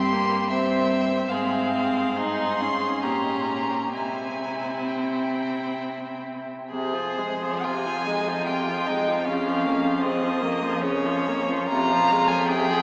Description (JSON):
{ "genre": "classical, slow romantic movement for string quartet", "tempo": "62-80 BPM", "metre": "3/4", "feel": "rubato", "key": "F minor", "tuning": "A4 = 440 Hz", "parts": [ { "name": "clear violin", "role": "melody", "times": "0.0-12.8 s", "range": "C5 to C6", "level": "-27 LUFS", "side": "equal", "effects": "none" }, { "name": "rich violin", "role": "second line", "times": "0.0-12.8 s", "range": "Bb3 to C5", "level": "-27 LUFS", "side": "equal", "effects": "none" }, { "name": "rich viola", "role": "accompaniment", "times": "0.0-12.8 s", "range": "C3 to Eb4", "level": "-27 LUFS", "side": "equal", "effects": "none" }, { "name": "warm cello", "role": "bass", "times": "0.0-12.8 s", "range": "F2 to C3", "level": "-31 LUFS", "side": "equal", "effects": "none" } ], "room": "wet cathedral reverb, RT60 6.3 s", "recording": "recorded in a church or concert hall, small speaker sound", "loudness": "-22 LUFS", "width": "side -33 dB against mid", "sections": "0.0-6.7 A section; 6.7-12.8 B section", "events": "none", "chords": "0.0 C7/G; 1.3 Fm/Ab; 3.0 Gdim/Bb; 3.9 C; 6.7 Fm; 9.3 Bbm/F; 11.7 Fm", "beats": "0.51 | 1.31 2.19 3.04 | 3.94 4.88 5.80 | 6.71 7.64 8.47 | 9.26 10.02 10.81 | 11.69 12.48" }